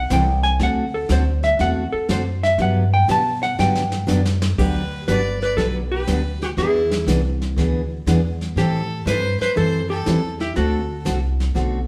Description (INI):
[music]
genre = country, western swing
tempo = 120 BPM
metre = 4/4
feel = swing 68% on 8ths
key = G major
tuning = A4 = 440 Hz
[part]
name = hollow-body jazz guitar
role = melody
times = 0.0-11.0 s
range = E4 to A5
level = -24 LUFS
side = equal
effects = none
[part]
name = upright bass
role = bass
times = 0.0-11.9 s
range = G1 to B2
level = -24 LUFS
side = equal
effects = none
[part]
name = picked steel-string acoustic guitar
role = accompaniment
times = 0.1-11.8 s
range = C3 to A4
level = -26 LUFS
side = equal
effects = none
[part]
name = vintage brush drum kit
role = drums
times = 0.1-11.9 s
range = brushed snare drum, crash cymbal, hi-hat, kick drum, snare drum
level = -31 LUFS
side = equal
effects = none
[part]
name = bright fiddle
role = second line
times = 4.6-11.0 s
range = E4 to D5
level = -32 LUFS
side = equal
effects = none
[sound]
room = wet large studio reverb, RT60 1.0 s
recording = band playing live in one room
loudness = -20 LUFS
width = mono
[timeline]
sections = 0.0-4.6 A section; 4.6-11.9 B section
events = hollow-body jazz guitar solo 0.0-4.6; drum fill 3.6-4.6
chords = 0.0 C6; 0.6 D7; 2.6 Gmaj7; 6.6 E7; 8.6 Am7; 10.6 D7